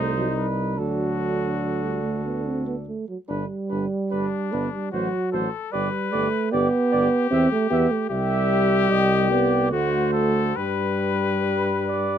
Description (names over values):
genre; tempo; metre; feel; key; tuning
classical, brass quintet; 74 BPM; 3/4; uneven beats, rubato; G major; A4 = 437 Hz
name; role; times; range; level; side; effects
clear trumpet; melody; 0.0-12.2 s; D4 to B4; -28 LUFS; left 9 dB; none
warm flugelhorn; second line; 0.0-12.2 s; A4 to E5; -29 LUFS; right 5 dB; none
dark euphonium; accompaniment; 0.0-12.2 s; F#3 to C4; -24 LUFS; right 2 dB; none
warm French horn; accompaniment; 0.0-12.2 s; D4 to G4; -29 LUFS; left 7 dB; none
warm tuba; bass; 0.0-12.2 s; G1 to G2; -28 LUFS; right 3 dB; none
room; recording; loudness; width
light reverb; close, detailed microphones; -21 LUFS; side -9 dB against mid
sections
0.0-12.2 A section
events
none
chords
0.0 Cm; 0.8 D; 3.3 G; 4.9 F#dim/A; 5.7 G; 7.3 Emadd11; 8.1 C; 8.9 Cm; 9.7 D7; 10.6 G